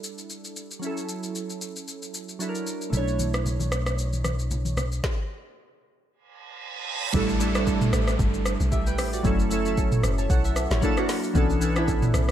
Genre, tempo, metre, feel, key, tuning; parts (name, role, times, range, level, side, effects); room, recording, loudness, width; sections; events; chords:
amapiano; 114 BPM; 4/4; swing 55% on 16ths; B minor; A4 = 440 Hz
glassy digital keys; accompaniment; 0.0-12.3 s; E3 to A5; -27 LUFS; right 1 dB; chorus
afro-pop drum kit; drums; 0.0-12.3 s; hi-hat, kick drum, rim click, shaker, snare drum, toms; -27 LUFS; equal; overdrive
fingered electric bass; bass; 2.9-5.0 s; B1; -26 LUFS; equal
congas; percussion; 2.9-4.9 s; -33 LUFS; left 2 dB
reverse cymbal and downlifter; sound effects; 6.4-11.4 s; -34 LUFS; right 3 dB
deep log drum bass; bass; 7.1-12.3 s; F#1 to B1; -26 LUFS; equal
little or no reverb; -23 LUFS; side -10 dB against mid
0.0-7.1 A section; 7.1-12.3 B section
stop 5.0-7.1; reverse cymbal 6.4-7.1; drop 7.1-12.3
0.0 A7sus4; 0.8 F#m7; 2.4 F#aug7; 2.9 Bm11; 5.0 N.C.; 7.1 A7sus4; 9.2 F#m7; 10.8 F#7alt; 11.4 Bm11